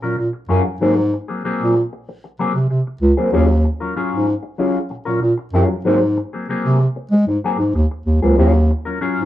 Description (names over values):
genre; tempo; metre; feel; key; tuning
funk; 95 BPM; 4/4; straight; Eb dorian; A4 = 440 Hz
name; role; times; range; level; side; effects
mellow electric guitar; accompaniment; 0.0-9.3 s; Gb3 to Bb4; -20 LUFS; left 2 dB; wah
dark bass clarinet; bass; 0.0-9.3 s; Db2 to Ab3; -16 LUFS; right 1 dB; none
room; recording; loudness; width
moderate studio reverb, RT60 0.8 s; band playing live in one room; -15 LUFS; side -13 dB against mid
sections
0.0-8.4 A section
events
none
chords
0.0 Ebm11 (rootless); 0.8 Ab9; 3.3 Ebm11; 5.9 Ab9; 8.4 Ebm11